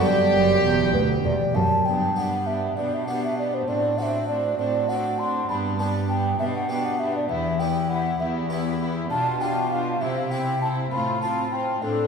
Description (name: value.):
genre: classical, baroque-style concerto movement with solo episodes.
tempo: 66 BPM (dotted quarters).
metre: 6/8.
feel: straight.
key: G major.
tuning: A4 = 441 Hz.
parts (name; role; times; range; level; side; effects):
mellow hollow wooden flute; melody; 0.0-12.1 s; A4 to C6; -25 LUFS; equal; none.
warm chamber violin section; melody; 0.0-12.1 s; F4 to G5; -37 LUFS; left 2 dB; none.
warm chamber violin section; second line; 0.0-12.1 s; D4 to G4; -30 LUFS; left 2 dB; none.
dark chamber viola section; accompaniment; 0.0-12.1 s; B3 to G4; -32 LUFS; right 4 dB; none.
harpsichord; accompaniment; 0.0-12.1 s; D2 to G4; -30 LUFS; left 2 dB; none.
rich chamber double bass section; bass; 0.0-1.6 s; E1 to D2; -28 LUFS; right 2 dB; none.
warm chamber cello section; bass; 0.0-12.1 s; D2 to C3; -28 LUFS; right 2 dB; none.
room: wet concert hall reverb, RT60 1.9 s.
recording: recorded in a church or concert hall.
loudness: -21 LUFS.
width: side -6 dB against mid.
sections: 0.0-1.9 A section; 1.9-12.1 B section.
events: none.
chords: 0.0 G; 2.8 G/B; 3.7 D7/A; 5.5 G; 6.4 G/B; 7.3 Em; 9.1 G7/B; 10.0 C; 10.9 F/A.